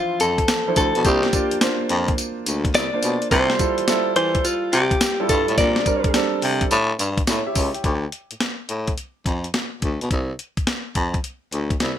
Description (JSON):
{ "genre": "R&B, new jack swing", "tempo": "106 BPM", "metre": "4/4", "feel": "swing 66% on 16ths", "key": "D minor", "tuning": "A4 = 440 Hz", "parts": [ { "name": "direct-recorded clean electric guitar", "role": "melody", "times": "0.0-6.1 s", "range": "F4 to D5", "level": "-21 LUFS", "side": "left 1 dB", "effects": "none" }, { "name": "warm baby grand piano", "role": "accompaniment", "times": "0.0-8.0 s", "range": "E3 to G5", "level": "-24 LUFS", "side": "right 3 dB", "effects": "none" }, { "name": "growling baritone saxophone", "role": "bass", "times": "0.2-11.9 s", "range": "C2 to E3", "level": "-22 LUFS", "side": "left 1 dB", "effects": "none" }, { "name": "crisp 8-bit digital drum machine", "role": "drums", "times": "0.2-12.0 s", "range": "hi-hat, kick drum, snare drum, tambourine", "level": "-23 LUFS", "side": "left 1 dB", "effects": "none" } ], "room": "little or no reverb", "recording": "none", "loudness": "-18 LUFS", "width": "side -10 dB against mid", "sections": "0.0-7.8 A section; 7.8-12.0 B section", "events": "none", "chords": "0.0 Dm9; 1.0 C9sus4; 3.3 Fmaj9/C; 5.6 Bb69; 6.7 A7; 7.8 Dm; 10.1 Csus24" }